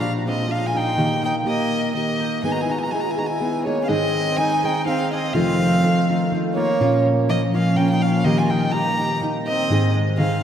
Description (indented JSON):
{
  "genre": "mexican folk, mariachi",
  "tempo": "124 BPM",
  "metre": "3/4",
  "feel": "swing 54% on 8ths",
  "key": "G# minor, Ab major from 3.9 s",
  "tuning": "A4 = 440 Hz",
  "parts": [
    { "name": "warm violin", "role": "melody", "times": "0.0-10.4 s", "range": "C#5 to A#5", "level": "-23 LUFS", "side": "equal", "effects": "diffuse ambient delay" },
    { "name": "dark trumpet", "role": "second line", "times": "0.0-10.4 s", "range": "A#3 to G4", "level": "-28 LUFS", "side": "right 3 dB", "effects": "diffuse ambient delay" },
    { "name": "nylon-string guitar", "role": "accompaniment", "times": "0.0-10.4 s", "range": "F2 to G#4", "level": "-24 LUFS", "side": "equal", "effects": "none" },
    { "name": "concert harp", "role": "arpeggios", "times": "0.0-10.4 s", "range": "Ab2 to G#5", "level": "-22 LUFS", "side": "equal", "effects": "none" }
  ],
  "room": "wet lush hall reverb, RT60 3.0 s",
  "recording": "dreamy mix soaked in reverb",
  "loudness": "-18 LUFS",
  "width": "side -9 dB against mid",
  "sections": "0.0-3.9 A section; 3.9-10.4 B section",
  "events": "none",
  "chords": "0.0 A#7; 1.0 D#; 2.4 G#m; 3.9 Ab; 5.4 F7; 6.8 Bbm; 8.2 Eb; 9.7 Ab",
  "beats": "0.01 0.50 | 0.98 1.47 1.95 | 2.44 2.92 3.41 | 3.90 4.38 4.87 | 5.35 5.84 6.32 | 6.80 7.28 7.76 | 8.25 8.73 9.21 | 9.70 10.18"
}